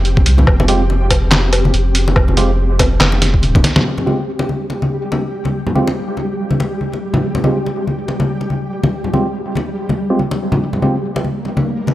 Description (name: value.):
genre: deep dubstep.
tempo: 142 BPM.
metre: 4/4.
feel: swing 57% on 16ths, half-time.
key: F minor.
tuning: A4 = 440 Hz.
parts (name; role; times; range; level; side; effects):
soft dub sub bass; bass; 0.0-3.6 s; F1 to C2; -14 LUFS; equal; none.
flickering grainy texture; texture; 0.0-11.9 s; G3 to G4; -22 LUFS; equal; built-in reverb.
trip hop sampler-style drum kit; drums; 0.1-3.8 s; handclaps, hi-hat, snare drum, woodblock; -16 LUFS; equal; low-pass filter on hats, studio reverb, low-pass filter on perc, low-pass filter on snare.
electronic kick drum; drums; 0.2-3.6 s; none; -14 LUFS; equal; studio reverb.
congas; percussion; 0.2-11.9 s; none; -19 LUFS; left 1 dB; none.
percussive organ stab; stabs; 0.7-11.0 s; Ab3 to G4; -21 LUFS; right 2 dB; wide subtle chorus, dub echo.
room: light reverb.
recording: dry, gritty hardware recording.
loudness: -13 LUFS.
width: side -15 dB against mid.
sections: 0.0-3.9 A section; 3.9-11.9 B section.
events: drum fill 3.6.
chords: 0.0 Fmadd9.